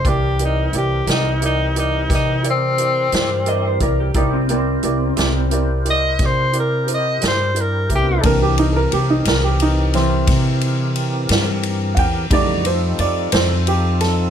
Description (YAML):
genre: slow blues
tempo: 59 BPM (dotted quarters)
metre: 12/8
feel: straight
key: C mixolydian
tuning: A4 = 440 Hz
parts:
  - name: clear tenor saxophone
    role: melody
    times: 0.0-8.3 s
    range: C4 to Eb5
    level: -19 LUFS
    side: left 2 dB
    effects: none
  - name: warm upright piano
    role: accompaniment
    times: 0.0-14.3 s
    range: E3 to G5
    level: -22 LUFS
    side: right 3 dB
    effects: none
  - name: upright bass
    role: bass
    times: 0.0-14.3 s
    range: C2 to C3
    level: -20 LUFS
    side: equal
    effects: none
  - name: swinging big-band drum kit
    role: drums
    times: 0.0-14.2 s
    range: hi-hat, kick drum, ride cymbal, snare drum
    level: -21 LUFS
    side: equal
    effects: none
  - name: tonewheel organ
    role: sustained chords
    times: 0.1-14.3 s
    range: Db3 to Bb5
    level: -27 LUFS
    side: left 2 dB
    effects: overdrive, chorus vibrato, slow rotary speaker
  - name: electric slide guitar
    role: second line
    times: 3.5-5.7 s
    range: C4 to Eb5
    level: -22 LUFS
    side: right 1 dB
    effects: none
room: light reverb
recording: none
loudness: -15 LUFS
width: side -8 dB against mid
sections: 0.0-8.2 A section; 8.2-14.3 B section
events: upright piano solo 8.2-14.3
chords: 0.0 C7; 12.3 F7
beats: | 0.05 1.07 2.10 3.12 | 4.15 5.17 6.20 7.22 | 8.24 9.26 10.28 11.29 | 12.31 13.33